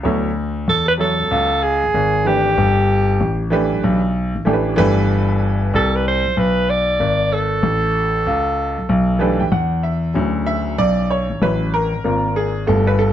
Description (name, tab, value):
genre	hip hop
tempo	95 BPM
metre	4/4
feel	swing 63% on 16ths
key	D major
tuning	A4 = 441 Hz
part	clear upright piano	accompaniment	0.0-13.1 s	C#3 to A5	-19 LUFS	right 2 dB	none
part	dark grand piano	bass	0.0-13.1 s	G1 to E2	-18 LUFS	left 1 dB	none
part	breathy alto saxophone	melody	0.7-9.5 s	G4 to D5	-18 LUFS	right 1 dB	none
room	light reverb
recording	band playing live in one room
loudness	-15 LUFS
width	side -10 dB against mid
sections	0.0-10.2 A section; 10.2-13.1 B section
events	upright piano fill 8.9-10.2; upright piano solo 10.2-13.1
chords	0.0 Dmaj9; 1.9 E7#9/G#; 2.6 G6; 4.8 Cmaj9/G; 7.6 A7sus2; 10.2 Dmaj9; 12.0 G#6